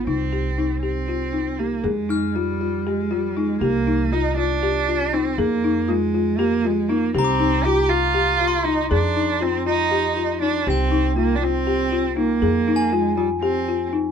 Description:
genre	contemporary instrumental, chamber music in an uneven meter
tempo	238 BPM (eighths)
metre	7/8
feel	straight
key	C minor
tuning	A4 = 440 Hz
part	rich cello	melody	0.0-13.9 s	G3 to G4	-22 LUFS	right 6 dB	none
part	upright bass	bass	0.0-14.1 s	C2 to F2	-26 LUFS	right 2 dB	none
part	folk marimba with medium mallets	arpeggios	0.1-14.1 s	Eb4 to Ab4	-23 LUFS	left 8 dB	none
part	glockenspiel with brass mallets	texture	2.1-3.8, 7.2-14.1 s	G5 to F6	-29 LUFS	left 3 dB	none
room	light reverb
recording	none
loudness	-18 LUFS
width	side -7 dB against mid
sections	0.0-1.8 A section; 1.8-14.1 B section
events	none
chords	0.1 Cm; 1.8 Fmadd9; 3.6 Cm7; 5.4 Fm; 7.1 Cm7; 8.9 N.C.; 10.7 Cm; 12.4 Fmadd9

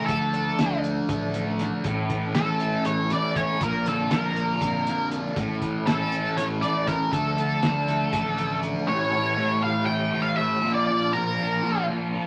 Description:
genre	psychedelic rock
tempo	239 BPM (eighths)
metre	7/8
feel	straight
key	A phrygian dominant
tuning	A4 = 435 Hz
part	octave-fuzz lead guitar	melody	0.0-11.8 s	A4 to G5	-28 LUFS	equal	wah, distortion
part	mellow tonewheel organ	sustained chords	0.0-12.3 s	E3 to A5	-34 LUFS	equal	chorus vibrato, fast rotary speaker
part	fuzz guitar	riff	0.0-12.3 s	A2 to D4	-30 LUFS	equal	distortion, phaser
part	fuzz picked electric bass	bass	0.1-8.7 s	A1 to F2	-36 LUFS	equal	overdrive
part	cloth-damped thuddy drum kit	drums	0.1-8.7 s	hi-hat, kick drum, snare drum	-31 LUFS	equal	none
room	wet studio reverb, RT60 0.5 s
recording	vinyl crackle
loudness	-25 LUFS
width	mono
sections	0.0-8.9 A section; 8.9-12.3 B section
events	none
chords	0.1 Dm; 1.9 A; 3.6 Bb; 5.4 A; 7.1 Dm; 8.9 A7; 10.6 Bbmaj7

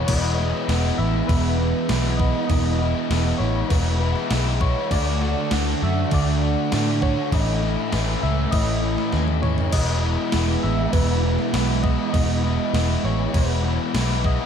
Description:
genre	rock, shoegaze and dream pop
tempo	100 BPM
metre	4/4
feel	straight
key	E major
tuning	A4 = 440 Hz
part	soft struck synth lead	melody	0.0-14.5 s	B4 to E5	-30 LUFS	equal	chorus, phaser, ping-pong delay
part	crunchy overdriven guitar	riff	0.0-14.5 s	A2 to F#4	-27 LUFS	right 12 dB	reverse reverb
part	overdriven electric guitar	riff	0.0-14.5 s	E2 to F#4	-26 LUFS	left 8 dB	wide subtle chorus
part	vintage muted picked electric bass	bass	0.0-14.4 s	E1 to A2	-22 LUFS	equal	none
part	gated 80s digital drum machine	drums	0.1-14.4 s	crash cymbal, kick drum, snare drum, toms	-26 LUFS	equal	gated reverb, gated reverb snare
room	moderate lush hall reverb, RT60 2.7 s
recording	dreamy mix soaked in reverb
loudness	-19 LUFS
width	side -8 dB against mid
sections	0.1-14.5 A section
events	drum fill 9.1-9.7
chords	0.1 Emaj7; 4.9 D; 7.3 A; 9.7 Emaj7

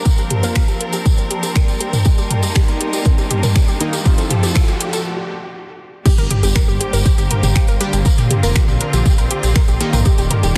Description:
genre	melodic techno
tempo	120 BPM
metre	4/4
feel	straight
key	G minor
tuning	A4 = 440 Hz
part	bright studio string section	sustained chords	0.0-10.6 s	D3 to Bb4	-28 LUFS	equal	sidechain pumping
part	riser and impact	sound effects	1.5-8.1 s	none	-32 LUFS	equal	none
part	airy breathy pad	texture	0.0-10.6 s	F3 to C6	-32 LUFS	equal	chorus, sidechain pumping
part	unison pluck	arpeggios	0.1-10.6 s	G4 to Bb4	-28 LUFS	equal	sidechain pumping, digital delay
part	electronic kick drum	drums	0.1-10.6 s	none	-16 LUFS	equal	none
part	house drum kit	drums	0.1-10.6 s	crash cymbal, finger snaps, hi-hat, toms	-22 LUFS	equal	soft clipping on snare
part	tambourine	percussion	0.1-10.5 s	none	-31 LUFS	equal	none
part	synth brass stab	stabs	0.4-4.3, 7.8-10.6 s	Eb3 to Bb4	-28 LUFS	equal	chorus, phaser, sidechain pumping, digital delay
part	dark detuned saw bass	bass	6.2-10.5 s	Eb1 to Bb2	-21 LUFS	equal	sidechain pumping
room	light reverb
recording	dense, heavily limited modern master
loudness	-16 LUFS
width	mono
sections	0.0-6.1 A section; 6.1-10.6 B section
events	build-up 0.0-6.1; filter sweep on synth arpeggio sound 0.0-6.1; break 5.1-6.1; drop 6.1-10.6; impact 6.1-8.1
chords	0.1 Bbadd9; 2.1 Eb; 4.1 F; 6.1 Gm; 8.1 Bbadd9; 10.1 Eb

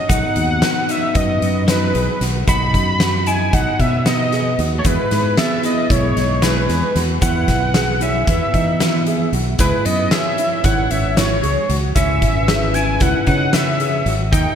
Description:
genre	progressive instrumental, band music in an uneven meter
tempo	228 BPM (eighths)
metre	9/8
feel	straight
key	B major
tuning	A4 = 443 Hz
part	wide unison lead	melody	0.0-14.6 s	B4 to B5	-20 LUFS	equal	ping-pong delay
part	warm grand piano	arpeggios	0.0-14.6 s	B3 to G#4	-26 LUFS	right 3 dB	wide subtle chorus, ping-pong delay
part	twelve-string electric guitar	second line	0.1-14.6 s	F#3 to F#4	-26 LUFS	right 2 dB	ping-pong delay
part	dark analog pad	accompaniment	0.1-14.6 s	B3 to B4	-28 LUFS	left 6 dB	chorus
part	fingered electric bass	bass	0.1-14.5 s	G#1 to E3	-20 LUFS	equal	none
part	oversized low-tuned drum kit	drums	0.1-14.4 s	hi-hat, kick drum, snare drum	-20 LUFS	equal	none
part	egg shaker	percussion	0.1-14.6 s	none	-34 LUFS	left 6 dB	none
room	moderate lush hall reverb, RT60 2.2 s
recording	bright 1980s-style digital production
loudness	-14 LUFS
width	side -8 dB against mid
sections	0.1-14.6 A section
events	none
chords	0.1 B; 4.9 E; 9.6 C#m7

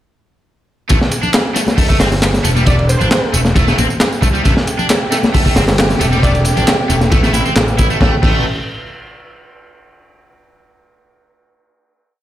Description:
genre	breakbeat, breaks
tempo	135 BPM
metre	4/4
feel	straight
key	A minor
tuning	A4 = 440 Hz
part	crunchy overdriven guitar	riff	0.9-8.4 s	G3 to E4	-20 LUFS	equal	vintage 12-bit sampler grit, ping-pong delay
part	fuzz picked electric bass	bass	0.9-8.4 s	E1 to C2	-16 LUFS	equal	overdrive
part	crunchy breakbeat drum kit	drums	0.9-8.3 s	crash cymbal, hi-hat, kick drum, ride cymbal, snare drum	-14 LUFS	equal	none
part	electronic tambourine and handclaps	drums	0.9-8.0 s	none	-23 LUFS	equal	overdrive
part	congas and bongos	percussion	1.2-7.4 s	none	-22 LUFS	left 4 dB	none
part	plucky unison lead	melody	2.7-3.3, 6.2-6.4 s	C5 to D5	-22 LUFS	equal	AM radio sound, ping-pong delay
part	rich chamber string section	sustained chords	4.4-8.2 s	C3 to G4	-20 LUFS	right 1 dB	sidechain pumping
room	moderate small room reverb, RT60 0.5 s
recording	played on a big sound system in a bare room, large studio reverb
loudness	-11 LUFS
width	side -13 dB against mid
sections	0.9-8.0 drop; 8.0-9.8 final chord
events	drop 0.9-8.0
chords	0.9 Am7; 8.0 N.C.

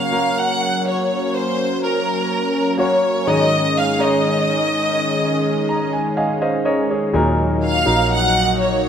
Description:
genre	pop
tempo	62 BPM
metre	4/4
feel	straight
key	unclear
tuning	A4 = 441 Hz
part	rich studio violin section	melody	0.0-8.9 s	Bb4 to Gb5	-19 LUFS	equal	none
part	bright concert grand piano	accompaniment	0.0-8.9 s	Ab2 to Bb5	-21 LUFS	equal	none
part	lush unison pad	sustained chords	0.0-8.9 s	Eb3 to Eb4	-21 LUFS	equal	chorus
part	vintage muted fingered electric bass	bass	7.1-8.9 s	Bb1 to Eb2	-22 LUFS	equal	none
room	moderate lush hall reverb, RT60 2.8 s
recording	rough home demo mix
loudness	-16 LUFS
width	side -8 dB against mid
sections	0.0-8.9 A section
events	grand piano fill 5.2-7.1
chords	0.0 Gb; 3.3 Absus4; 7.1 Ebm

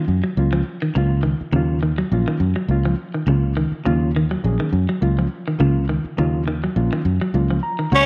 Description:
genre	afrobeat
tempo	103 BPM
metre	4/4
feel	swing 54% on 16ths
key	Eb minor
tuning	A4 = 439 Hz
part	reed electric piano	accompaniment	0.0-8.1 s	Gb3 to Bb5	-29 LUFS	equal	fast tremolo
part	semi-hollow electric guitar	arpeggios	0.0-8.1 s	Db3 to Gb3	-25 LUFS	equal	none
part	fingered electric bass	bass	0.1-8.1 s	Bb1 to Gb2	-22 LUFS	equal	none
part	brilliant trumpet	second line	7.9-8.1 s	Db5	-23 LUFS	equal	none
part	raspy tenor saxophone	melody	8.0-8.1 s	Db4	-15 LUFS	equal	slapback echo
room	moderate echo chamber reverb, RT60 1.5 s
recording	none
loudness	-20 LUFS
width	mono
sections	0.0-8.1 A section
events	reed electric piano fill 7.3-8.1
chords	0.0 Ebm7

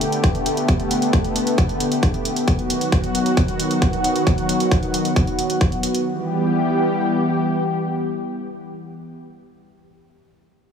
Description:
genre	uplifting trance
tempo	134 BPM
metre	4/4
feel	straight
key	E minor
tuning	A4 = 441 Hz
part	lush unison pad	sustained chords	0.0-9.1 s	D3 to G4	-20 LUFS	equal	chorus, sidechain pumping
part	electronic hi-hat	drums	0.0-6.0 s	none	-28 LUFS	right 1 dB	overdrive, sidechain pumping on hats, sidechain pumping on toms
part	electronic kick drum	drums	0.2-5.7 s	none	-19 LUFS	equal	overdrive
room	light reverb, digital ambience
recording	small room ambience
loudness	-17 LUFS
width	side -7 dB against mid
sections	0.0-6.1 A section; 6.1-9.6 B section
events	none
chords	0.0 Gadd9; 2.5 B; 6.1 Em

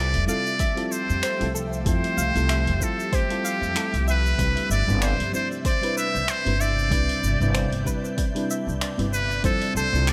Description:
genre	sunset chillout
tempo	95 BPM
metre	4/4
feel	swing 57% on 16ths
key	C major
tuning	A4 = 440 Hz
part	trumpet with metal mute	melody	0.0-10.1 s	G4 to E5	-29 LUFS	equal	digital delay
part	mellow FM electric piano	accompaniment	0.0-10.1 s	G3 to C5	-32 LUFS	equal	chorus, phaser
part	ethereal airy pad	sustained chords	0.0-10.1 s	C3 to E5	-35 LUFS	equal	ensemble chorus, built-in reverb, phaser
part	upright bass	bass	0.0-10.1 s	F1 to F2	-27 LUFS	equal	none
part	deep house drum kit	drums	0.1-10.1 s	finger snaps, hi-hat, shaker	-35 LUFS	equal	none
part	soft round pluck	arpeggios	0.3-10.1 s	A4 to F5	-37 LUFS	equal	chorus, cassette tape, delay
part	electronic kick drum	drums	0.6-9.6 s	none	-28 LUFS	equal	none
part	wind-like tuned noise texture	texture	5.5-10.1 s	G6	-44 LUFS	equal	none
room	light reverb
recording	none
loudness	-24 LUFS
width	mono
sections	0.0-10.1 A section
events	none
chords	0.0 Fmaj9; 4.4 Cmaj9; 9.4 Fmaj9

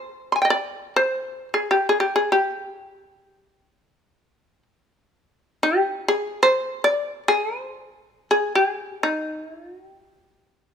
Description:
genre	japanese traditional, Japanese chamber music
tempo	free time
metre	none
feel	none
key	unclear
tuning	A4 = 438 Hz
part	shamisen	solo	0.0-10.7 s	G4 to C6	-20 LUFS	equal	none
room	light reverb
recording	close, detailed microphones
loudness	-20 LUFS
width	side -7 dB against mid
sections	0.0-10.7 A section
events	none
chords	none

